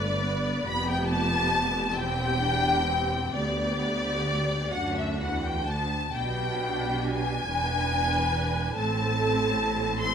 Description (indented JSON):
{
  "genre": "classical, slow romantic movement for string orchestra",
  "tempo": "42-49 BPM (dotted quarters)",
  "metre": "6/8",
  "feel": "rubato",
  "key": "G major",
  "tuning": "A4 = 437 Hz",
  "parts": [
    { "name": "rich symphonic violin section", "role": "melody", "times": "0.0-10.1 s", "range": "D5 to C6", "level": "-30 LUFS", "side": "left 2 dB", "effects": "none" },
    { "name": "warm symphonic violin section", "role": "second line", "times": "0.0-10.1 s", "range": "D5 to C6", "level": "-30 LUFS", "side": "left 2 dB", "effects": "none" },
    { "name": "rich symphonic viola section", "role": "accompaniment", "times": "0.0-10.1 s", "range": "A3 to B4", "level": "-32 LUFS", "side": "right 2 dB", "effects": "none" },
    { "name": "rich symphonic cello section", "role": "bass", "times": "0.0-10.1 s", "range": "D2 to B2", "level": "-32 LUFS", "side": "right 2 dB", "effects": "none" },
    { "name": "rich symphonic double bass section", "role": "bass", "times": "0.0-10.1 s", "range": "E1 to D2", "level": "-32 LUFS", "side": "right 2 dB", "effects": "none" }
  ],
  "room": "moderate scoring stage reverb, RT60 1.9 s",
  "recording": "none",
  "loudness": "-24 LUFS",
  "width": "side -7 dB against mid",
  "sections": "0.0-10.1 A section",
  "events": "none",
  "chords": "0.0 G; 0.7 G7/F; 2.0 C/E; 3.3 G/D; 4.7 D; 6.1 G/B; 7.5 E7; 8.8 Am"
}